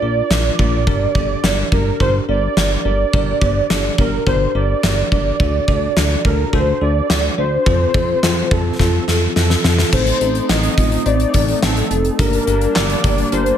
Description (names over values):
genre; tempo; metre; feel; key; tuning
synth-pop; 106 BPM; 4/4; straight; G minor; A4 = 436 Hz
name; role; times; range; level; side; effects
analog synth brass; melody; 0.0-13.6 s; A4 to Eb5; -20 LUFS; right 2 dB; chorus, tape echo
bell-like tine electric piano; accompaniment; 0.0-13.6 s; C4 to C5; -23 LUFS; left 1 dB; fast stereo tremolo
chorused synth bass; bass; 0.0-13.5 s; F1 to F2; -19 LUFS; equal; none
gated 80s drum kit; drums; 0.3-13.6 s; crash cymbal, handclaps, hi-hat, kick drum, snare drum; -18 LUFS; left 1 dB; gated reverb
brassy analog pad; sustained chords; 9.9-13.6 s; G3 to Eb4; -24 LUFS; left 2 dB; chorus
room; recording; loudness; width
light reverb, small room ambience; none; -14 LUFS; side -9 dB against mid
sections
0.0-9.9 A section; 9.9-13.6 B section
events
drum fill 8.8-9.9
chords
0.0 Bb; 0.9 Gm; 5.4 D; 7.7 F; 9.9 Adim; 12.2 Gm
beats
0.30 | 0.87 1.44 2.00 2.57 | 3.13 3.70 4.27 4.83 | 5.40 5.96 6.53 7.10 | 7.66 8.23 8.79 9.36 | 9.93 10.49 11.06 11.62 | 12.19 12.76 13.32